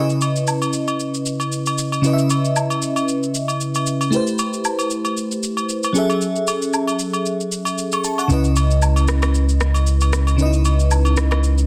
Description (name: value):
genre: amapiano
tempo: 115 BPM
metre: 4/4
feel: swing 55% on 16ths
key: C# minor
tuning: A4 = 437 Hz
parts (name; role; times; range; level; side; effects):
- crystalline FM electric piano; accompaniment; 0.0-11.7 s; C#3 to C#6; -22 LUFS; equal; chorus
- electronic shaker and rim click; drums; 0.1-11.7 s; none; -29 LUFS; equal; vintage 12-bit sampler grit
- agogo bells and woodblock; percussion; 0.2-11.4 s; none; -28 LUFS; equal; none
- punchy sub bass; bass; 8.3-11.7 s; C#2; -18 LUFS; equal; none
room: light reverb, digital ambience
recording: dense, heavily limited modern master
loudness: -19 LUFS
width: mono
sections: 0.0-11.7 A section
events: none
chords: 0.0 C#m9; 4.1 Am9; 6.0 F#m9; 8.3 C#m9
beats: 0.48 1.00 1.52 | 2.04 2.56 3.08 3.61 | 4.13 4.65 5.17 5.69 | 6.21 6.74 7.26 7.78 | 8.30 8.82 9.35 9.87 | 10.39 10.91 11.43